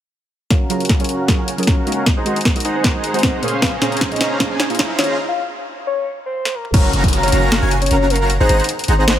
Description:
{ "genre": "future bass", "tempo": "154 BPM", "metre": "4/4", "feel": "swing 54% on 16ths, half-time", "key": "unclear", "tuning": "A4 = 440 Hz", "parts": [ { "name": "soft octave-layered synth lead", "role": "melody", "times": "0.5-9.2 s", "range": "Bb4 to F5", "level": "-23 LUFS", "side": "left 2 dB", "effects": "chorus, phaser, cassette tape, sidechain pumping, dub echo" }, { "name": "dense compressed supersaw", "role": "riff", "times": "0.5-9.2 s", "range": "Db4 to C6", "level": "-21 LUFS", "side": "right 1 dB", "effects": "sidechain pumping, low-pass filter" }, { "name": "electronic kick drum", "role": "drums", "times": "0.5-7.1 s", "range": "none", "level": "-17 LUFS", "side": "equal", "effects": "overdrive, studio reverb" }, { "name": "trap drum kit", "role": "drums", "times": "0.5-9.2 s", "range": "crash cymbal, hi-hat, snare drum, toms", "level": "-20 LUFS", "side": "equal", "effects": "studio reverb" }, { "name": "riser and downlifter", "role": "sound effects", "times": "2.6-9.2 s", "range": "none", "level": "-28 LUFS", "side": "right 1 dB", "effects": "none" }, { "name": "soft round pluck", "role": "accompaniment", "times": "0.7-5.2 s", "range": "Bb2 to Eb5", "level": "-25 LUFS", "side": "right 3 dB", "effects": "analog chorus, sidechain pumping, tape echo" }, { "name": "airy dreamy lead", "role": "arpeggios", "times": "6.7-9.2 s", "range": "Ab5 to Bb5", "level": "-24 LUFS", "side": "equal", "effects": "chorus, sidechain pumping, tape echo" }, { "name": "long sustained 808-style bass", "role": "bass", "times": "6.7-9.2 s", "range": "Gb1 to Ab1", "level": "-17 LUFS", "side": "equal", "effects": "sidechain pumping" } ], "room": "light reverb", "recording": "high-pass filter", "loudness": "-14 LUFS", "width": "side -11 dB against mid", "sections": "0.5-6.7 A section; 6.7-9.2 B section", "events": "build-up 0.5-6.7; drum fill 0.5-5.2, 6.4; filter sweep on supersaw synth 0.5-6.7; filter sweep on soft synth lead 0.5-6.7; break 5.2-6.7; drop 6.7-9.2", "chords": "0.5 Gbmaj7; 2.1 Ab9; 3.4 Bbm9; 5.2 N.C.; 6.7 Gbmaj7; 8.3 Ab9", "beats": "| 0.51 0.90 1.28 1.67 | 2.06 2.45 2.84 3.23 | 3.62 4.01 4.40 4.79 | 5.18 5.57 5.96 6.35 | 6.74 7.13 7.52 7.91 | 8.30 8.69 9.08" }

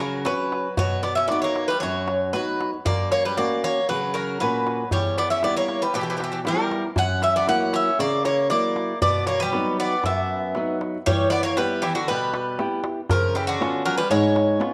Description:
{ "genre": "greek folk, Greek bouzouki band", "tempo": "117 BPM", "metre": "4/4", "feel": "straight", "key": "E dorian sharp4", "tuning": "A4 = 441 Hz", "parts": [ { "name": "Greek bouzouki", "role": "melody", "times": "0.0-14.7 s", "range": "F#4 to F#5", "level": "-26 LUFS", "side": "equal", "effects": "none" }, { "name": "Greek bouzouki", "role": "second line", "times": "0.0-14.7 s", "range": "D3 to C#4", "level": "-32 LUFS", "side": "equal", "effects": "none" }, { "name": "flamenco guitar", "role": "accompaniment", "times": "0.0-14.7 s", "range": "E2 to C#5", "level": "-29 LUFS", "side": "equal", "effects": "none" }, { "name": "darbuka", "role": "percussion", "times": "0.0-14.7 s", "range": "none", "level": "-30 LUFS", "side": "equal", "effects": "none" } ], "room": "moderate echo chamber reverb, RT60 1.5 s, small room ambience", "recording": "none", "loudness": "-23 LUFS", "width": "mono", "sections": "0.0-11.1 A section; 11.1-14.7 B section", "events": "speeding up 0.0-14.7", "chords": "0.0 F#; 0.8 B; 2.9 F#; 4.9 Em; 7.0 F#7; 9.0 B; 11.1 Em; 13.1 C#7", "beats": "0.26 | 0.78 1.30 1.82 2.33 | 2.85 3.37 3.89 4.40 | 4.92 5.43 5.95 6.46 | 6.98 7.49 8.00 8.51 | 9.02 9.53 10.04 10.55 | 11.06 11.57 12.08 12.58 | 13.09 13.60 14.10 14.61" }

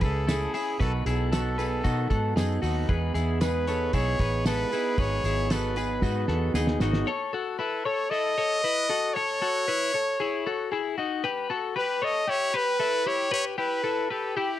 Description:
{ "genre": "jangly indie pop", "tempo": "115 BPM", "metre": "4/4", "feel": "straight", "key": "unclear", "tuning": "A4 = 438 Hz", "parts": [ { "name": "bright trumpet", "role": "melody", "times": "0.0-14.6 s", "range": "G4 to D#5", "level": "-28 LUFS", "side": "equal", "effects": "slapback echo" }, { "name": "electric guitar through a small old amp", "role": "accompaniment", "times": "0.0-7.1 s", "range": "G#2 to A4", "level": "-32 LUFS", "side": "right 6 dB", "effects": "none" }, { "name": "twelve-string electric guitar", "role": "arpeggios", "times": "0.0-14.6 s", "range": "D#4 to C#5", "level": "-29 LUFS", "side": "left 6 dB", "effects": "none" }, { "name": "vintage muted fingered electric bass", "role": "bass", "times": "0.0-7.0 s", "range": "G#1 to B2", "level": "-28 LUFS", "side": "equal", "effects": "none" }, { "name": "cloth-damped thuddy drum kit", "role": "drums", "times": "0.0-7.1 s", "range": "hi-hat, kick drum, snare drum", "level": "-28 LUFS", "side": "right 1 dB", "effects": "none" }, { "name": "tambourine", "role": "percussion", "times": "0.0-6.9 s", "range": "none", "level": "-45 LUFS", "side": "right 11 dB", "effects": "none" } ], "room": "light reverb", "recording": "dark, warm production", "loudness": "-24 LUFS", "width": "side -12 dB against mid", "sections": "0.0-7.1 A section; 7.1-14.6 B section", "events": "drum fill 6.0-7.1", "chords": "0.0 Amaj7; 0.8 B7; 2.9 Emaj7; 5.0 G#m7; 7.1 A; 11.2 Em", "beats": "0.28 | 0.80 1.32 1.85 2.37 | 2.89 3.41 3.94 4.46 | 4.98 5.50 6.02 6.54 | 7.07 7.59 8.11 8.63 | 9.15 9.67 10.20 10.72 | 11.24 11.76 12.28 12.80 | 13.32 13.84 14.37" }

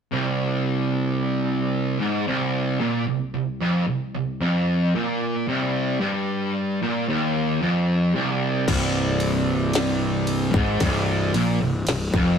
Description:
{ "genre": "stoner and doom metal", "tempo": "56 BPM", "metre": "4/4", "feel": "straight", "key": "C minor", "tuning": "A4 = 440 Hz", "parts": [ { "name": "fuzz guitar", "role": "riff", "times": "0.1-12.4 s", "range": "C2 to Bb2", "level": "-21 LUFS", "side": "right 1 dB", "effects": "distortion" }, { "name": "fuzz fingered electric bass", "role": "bass", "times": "8.7-12.4 s", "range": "C1 to Bb1", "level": "-25 LUFS", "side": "left 2 dB", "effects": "overdrive, tube saturation" }, { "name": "minimal click drum kit", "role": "drums", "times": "8.7-12.4 s", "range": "crash cymbal, kick drum, ride cymbal, snare drum", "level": "-26 LUFS", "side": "left 1 dB", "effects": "none" } ], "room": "moderate stone room reverb, RT60 1.0 s", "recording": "rough rehearsal-room recording", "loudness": "-20 LUFS", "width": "side -7 dB against mid", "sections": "0.1-8.7 A section; 8.7-12.4 B section", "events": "none", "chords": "none", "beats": "| 0.11 1.19 2.26 3.33 | 4.41 5.48 6.55 7.61 | 8.68 9.75 10.81 11.87" }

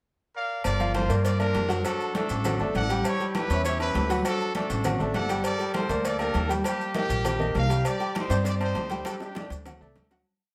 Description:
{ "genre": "latin, salsa", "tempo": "200 BPM", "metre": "4/4", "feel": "straight", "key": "G minor", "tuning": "A4 = 437 Hz", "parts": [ { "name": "clear trumpet section", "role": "melody", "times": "0.3-9.6 s", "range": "Bb3 to F#5", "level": "-33 LUFS", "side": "equal", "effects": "none" }, { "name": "upright bass", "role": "bass", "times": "0.6-10.2 s", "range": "G1 to G2", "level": "-30 LUFS", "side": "equal", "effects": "none" }, { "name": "agogo bells and timbales", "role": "percussion", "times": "0.6-10.3 s", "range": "none", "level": "-38 LUFS", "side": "equal", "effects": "none" }, { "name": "congas", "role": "percussion", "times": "0.6-10.3 s", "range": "none", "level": "-36 LUFS", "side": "equal", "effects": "none" }, { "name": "cowbell and bongos", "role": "percussion", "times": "0.6-10.3 s", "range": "none", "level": "-38 LUFS", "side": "equal", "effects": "none" }, { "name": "maracas", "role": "percussion", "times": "0.7-10.3 s", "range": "none", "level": "-47 LUFS", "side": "equal", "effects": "none" }, { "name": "bright upright piano", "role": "accompaniment", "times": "0.8-10.2 s", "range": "F3 to G5", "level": "-32 LUFS", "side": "equal", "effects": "none" } ], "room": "moderate studio reverb, RT60 0.8 s", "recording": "none", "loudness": "-26 LUFS", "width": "mono", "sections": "0.0-0.6 pickup bar; 0.6-10.3 mambo (horn riffs)", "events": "fade-out 8.3-10.3; drum fill 9.1-10.3", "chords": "0.0 Bb; 0.6 Gm7; 1.8 D; 3.0 Em13; 4.2 D; 5.4 Gmadd9; 6.6 Ebadd9; 7.8 Cmadd9; 9.1 Dsus4; 9.7 D", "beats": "0.04 0.34 | 0.65 0.95 1.25 1.55 | 1.85 2.15 2.45 2.75 | 3.05 3.35 3.65 3.95 | 4.25 4.55 4.85 5.15 | 5.45 5.75 6.05 6.35 | 6.65 6.95 7.25 7.55 | 7.85 8.15 8.45 8.75 | 9.05 9.36 9.66 9.96" }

